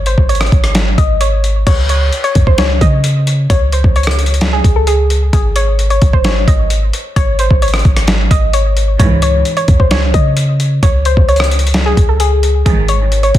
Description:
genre	hip hop, trap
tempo	131 BPM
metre	4/4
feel	half-time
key	C# harmonic minor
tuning	A4 = 440 Hz
part	soft round pluck	melody	0.0-13.4 s	G#4 to D#5	-17 LUFS	left 1 dB	chorus, tape echo
part	clean 808-style bass	bass	0.0-13.4 s	G#1 to C#3	-13 LUFS	equal	none
part	boom bap sampler-style drum kit	drums	0.1-13.4 s	crash cymbal, hi-hat, kick drum, rim click, snare drum	-13 LUFS	equal	overdrive
part	dark symphonic string section	stabs	9.0-9.3, 12.7-13.0 s	C#2 to E3	-18 LUFS	right 2 dB	tape echo
room	little or no reverb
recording	dense, heavily limited modern master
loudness	-10 LUFS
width	side -13 dB against mid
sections	0.0-1.7 A section; 1.7-13.4 B section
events	none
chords	0.0 G#sus4; 1.7 C#5; 5.3 G#sus4; 9.0 C#5; 12.7 G#sus4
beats	0.29 0.75 1.21 | 1.67 2.12 2.58 3.04 | 3.50 3.96 4.42 4.87 | 5.33 5.79 6.25 6.71 | 7.16 7.62 8.08 8.54 | 8.99 9.45 9.91 10.37 | 10.83 11.29 11.74 12.20 | 12.66 13.12

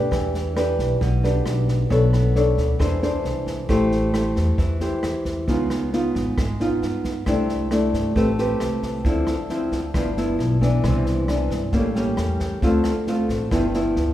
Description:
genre	bossa nova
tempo	134 BPM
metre	4/4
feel	straight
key	unclear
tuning	A4 = 440 Hz
part	nylon-string guitar	accompaniment	0.0-14.1 s	G2 to C#5	-22 LUFS	equal	none
part	upright bass	bass	0.0-14.1 s	G1 to G2	-24 LUFS	equal	none
part	open jazz drum kit	drums	0.1-14.0 s	kick drum, rim click, snare drum	-29 LUFS	equal	none
room	wet recital hall reverb, RT60 1.6 s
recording	recorded in a church or concert hall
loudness	-19 LUFS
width	side -13 dB against mid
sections	0.0-14.1 A section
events	none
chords	0.1 Em7; 1.9 Bm9; 2.8 Eaug7; 3.7 Am7; 5.5 Db9; 7.3 C69; 8.2 Am9; 9.1 Dm9; 9.9 G6; 10.8 Cmaj9; 11.7 A7b9; 12.6 Dm7; 13.5 G6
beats	| 0.12 0.56 1.01 1.46 | 1.91 2.35 2.80 3.25 | 3.69 4.14 4.59 5.03 | 5.48 5.93 6.37 6.82 | 7.27 7.71 8.16 8.61 | 9.05 9.50 9.95 10.39 | 10.84 11.29 11.73 12.18 | 12.63 13.07 13.52 13.97

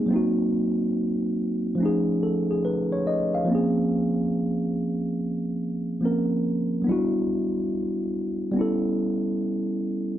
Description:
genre	R&B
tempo	71 BPM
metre	4/4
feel	swing 64% on 16ths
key	unclear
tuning	A4 = 438 Hz
part	tine electric piano	solo	0.0-10.2 s	F3 to F5	-23 LUFS	equal	none
room	wet studio reverb, RT60 0.6 s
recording	none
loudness	-23 LUFS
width	side -12 dB against mid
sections	0.0-10.2 A section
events	none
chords	0.1 Cm7b5; 1.8 F7alt; 3.5 Bbm9; 6.9 Em7; 8.5 A9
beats	| 0.10 0.94 1.79 2.63 | 3.48 4.32 5.17 6.01 | 6.86 7.70 8.55 9.39

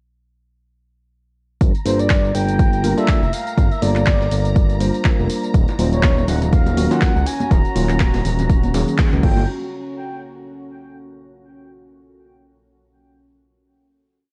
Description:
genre	deep house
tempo	122 BPM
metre	4/4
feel	swing 56% on 16ths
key	unclear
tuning	A4 = 440 Hz
part	deep dark ambient pad	sustained chords	2.7-9.5 s	A3 to Bb4	-34 LUFS	equal	chorus, built-in reverb, sidechain pumping
part	smooth synth bass	bass	1.6-9.5 s	Eb1 to Db2	-22 LUFS	equal	none
part	breakbeat sampler-style drum kit	drums	1.6-9.1 s	hi-hat, snare drum	-40 LUFS	equal	none
part	electronic kick drum	drums	1.6-9.3 s	none	-18 LUFS	equal	overdrive, vintage 12-bit sampler grit
part	punchy analog drum machine	drums	1.6-9.3 s	crash cymbal, handclaps, hi-hat, tambourine	-30 LUFS	equal	overdrive, vintage 12-bit sampler grit
part	soft string machine	texture	1.6-9.5 s	Bb5	-38 LUFS	equal	ensemble chorus, sidechain pumping
part	breathy flute-like synth lead	melody	1.9-9.5 s	C5 to Bb5	-28 LUFS	equal	lush chorus, analog delay
part	bell-like tine electric piano	stabs	1.9-9.4 s	Eb3 to C5	-24 LUFS	equal	none
part	bongos and congas	percussion	5.7-9.5 s	none	-29 LUFS	equal	none
room	little or no reverb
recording	cassette tape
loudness	-17 LUFS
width	mono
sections	1.6-9.5 drop; 9.5-11.4 final hit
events	drop 1.6-9.5; band accent 9.0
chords	1.6 Gm7; 5.5 Ebm7; 9.2 Gm7; 9.5 N.C.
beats	| 1.61 2.10 2.59 3.08 | 3.58 4.07 4.56 5.05 | 5.54 6.04 6.53 7.02 | 7.51 8.00 8.49 8.99 | 9.48

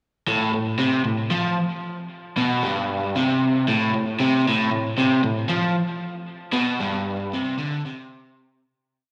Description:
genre	rock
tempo	115 BPM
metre	4/4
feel	straight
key	A minor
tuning	A4 = 440 Hz
part	crunchy overdriven guitar	solo	0.3-8.6 s	G2 to F3	-23 LUFS	equal	slapback echo, tape echo
room	moderate lush hall reverb, RT60 2.5 s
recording	live gig heard through the venue's PA, club reverb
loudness	-23 LUFS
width	mono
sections	0.3-8.6 riff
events	fade-out 6.5-8.6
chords	none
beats	| 0.28 0.80 1.32 1.85 | 2.37 2.89 3.41 3.93 | 4.46 4.98 5.50 6.02 | 6.54 7.06 7.58 8.11

